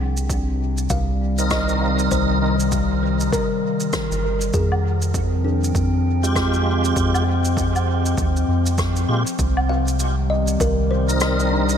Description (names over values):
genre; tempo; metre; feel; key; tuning
ambient dub; 99 BPM; 4/4; swing 60% on 16ths; C minor; A4 = 440 Hz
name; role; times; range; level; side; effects
warbly tape-like pad; sustained chords; 0.0-11.8 s; C3 to G5; -23 LUFS; left 3 dB; chorus, built-in reverb, vintage 12-bit sampler grit
kalimba; arpeggios; 0.0-11.8 s; D4 to F5; -28 LUFS; left 2 dB; dub echo
soft dub sub bass; bass; 0.0-11.8 s; G1 to Bb2; -21 LUFS; equal; tube saturation
shaker, rim click and woodblock; drums; 0.2-11.8 s; none; -29 LUFS; equal; small room ambience, dub echo
electronic kick drum; drums; 0.3-10.7 s; none; -27 LUFS; equal; small room ambience
tonewheel organ; stabs; 1.4-2.6, 6.2-11.8 s; Ab3 to Bb4; -26 LUFS; right 3 dB; chorus vibrato, slow rotary speaker, dub echo
room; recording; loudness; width
light reverb, small room ambience; none; -18 LUFS; side -8 dB against mid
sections
0.0-9.4 A section; 9.4-11.8 B section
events
none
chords
0.0 Cm7; 4.5 Fmadd9; 9.4 Cm7